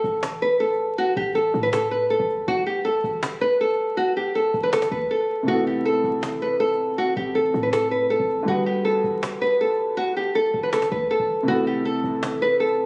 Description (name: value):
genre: hip hop, trap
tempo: 160 BPM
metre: 4/4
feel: half-time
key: A dorian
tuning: A4 = 440 Hz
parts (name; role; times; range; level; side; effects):
- nylon-string guitar; melody; 0.0-12.9 s; F#4 to B4; -23 LUFS; equal; low-pass filter
- short 808-style bass; bass; 0.0-12.9 s; G1 to A2; -36 LUFS; equal; none
- cajon; drums; 0.0-12.8 s; none; -31 LUFS; equal; none
- felt-muted upright piano; accompaniment; 5.4-12.9 s; C3 to B4; -29 LUFS; equal; low-pass filter
room: light reverb, small room ambience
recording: recorded on a phone in the room, studio reverb, vinyl crackle, compression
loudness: -22 LUFS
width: mono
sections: 0.0-12.9 A section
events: drums muted 5.1-5.5; hi-hats muted 10.0-11.5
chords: 0.0 A5; 2.5 G5; 5.5 Amadd9; 8.5 Gmaj7; 11.5 Amadd9